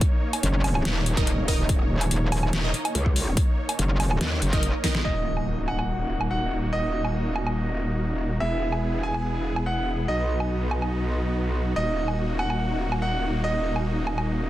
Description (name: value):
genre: heavy wobble dubstep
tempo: 143 BPM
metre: 4/4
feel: half-time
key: Eb phrygian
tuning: A4 = 440 Hz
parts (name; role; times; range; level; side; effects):
- supersaw chords; sustained chords; 0.0-14.5 s; Bb3 to Db5; -32 LUFS; right 1 dB; sidechain pumping, low-pass filter
- dubstep drum kit; drums; 0.0-14.3 s; hi-hat, snare drum, woodblock; -29 LUFS; equal; overdrive, low-pass filter on hats, low-pass filter on perc, low-pass filter on snare, low-pass filter on room
- electronic kick drum; drums; 0.0-4.9 s; none; -23 LUFS; equal; overdrive
- metallic wobble bass; bass; 0.4-4.7 s; Eb1 to Gb1; -23 LUFS; equal; distortion, chorus, overdrive
- orchestra-hit-like synth stab; stabs; 1.2-5.0 s; Eb4 to Eb5; -33 LUFS; right 3 dB; built-in reverb, phaser, dub echo
- metallic wobble bass; bass; 1.4-14.5 s; Eb1 to Eb2; -26 LUFS; equal; chorus, overdrive
- bright concert grand piano; melody; 5.0-14.5 s; Eb5 to G#5; -30 LUFS; right 1 dB; dub echo
- impact; sound effects; 5.0-6.7 s; none; -32 LUFS; equal; none
room: light reverb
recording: dense, heavily limited modern master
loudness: -23 LUFS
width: side -14 dB against mid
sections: 0.0-5.0 A section; 5.0-14.5 B section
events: drop 0.0-5.0; drum fill 4.8; impact 5.0-6.7; filter sweep on supersaw synth 5.0-14.5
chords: 0.0 Eb5; 5.0 Ebm; 8.4 E; 10.1 B; 11.8 Ebm